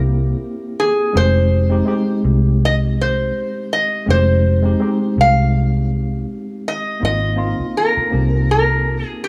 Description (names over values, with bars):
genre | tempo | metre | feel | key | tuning
lush 1970s-style soul | 82 BPM | 4/4 | swing 54% on 16ths | F minor | A4 = 441 Hz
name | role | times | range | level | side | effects
tine electric piano | accompaniment | 0.0-9.3 s | Ab3 to G4 | -24 LUFS | equal | overdrive
vintage muted fingered electric bass | bass | 0.0-9.0 s | F1 to C2 | -18 LUFS | equal | none
metal-body resonator slide guitar | melody | 0.8-9.3 s | Ab4 to F5 | -21 LUFS | equal | none
room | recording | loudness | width
small room ambience | none | -17 LUFS | mono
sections
0.0-7.0 A section; 7.0-9.3 B section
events
none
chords
0.0 C7; 1.1 Fm7; 7.0 Ab6